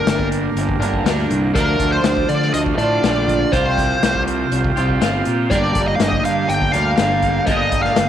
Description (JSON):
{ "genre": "psychedelic rock", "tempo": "121 BPM", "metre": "4/4", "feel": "straight", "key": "G minor", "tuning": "A4 = 440 Hz", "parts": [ { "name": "fuzz lead guitar", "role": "melody", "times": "0.0-8.1 s", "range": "Bb4 to G5", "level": "-20 LUFS", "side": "equal", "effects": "wah, distortion, tape echo" }, { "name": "combo organ", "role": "sustained chords", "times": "0.0-8.1 s", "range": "D3 to A5", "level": "-27 LUFS", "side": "right 9 dB", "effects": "none" }, { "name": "twelve-string electric guitar", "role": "riff", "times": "0.0-8.1 s", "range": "G2 to G4", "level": "-21 LUFS", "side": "right 1 dB", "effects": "phaser, double-tracked left and right" }, { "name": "fuzz fingered electric bass", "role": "bass", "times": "0.1-8.1 s", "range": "G1 to D3", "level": "-22 LUFS", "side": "equal", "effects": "overdrive" }, { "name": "vintage drum kit", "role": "drums", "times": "0.1-8.1 s", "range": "hi-hat, kick drum, snare drum", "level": "-22 LUFS", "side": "left 3 dB", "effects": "none" } ], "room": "moderate echo chamber reverb, RT60 1.6 s, small room ambience", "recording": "1960s-style stereo", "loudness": "-15 LUFS", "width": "side -10 dB against mid", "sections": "0.0-8.1 A section", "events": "none", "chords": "0.0 Gm; 1.6 Dm; 3.5 Csus4; 5.5 Gm", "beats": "0.07 0.56 1.06 | 1.55 2.04 2.54 3.03 | 3.53 4.02 4.51 5.01 | 5.50 6.00 6.49 6.98 | 7.48 7.97" }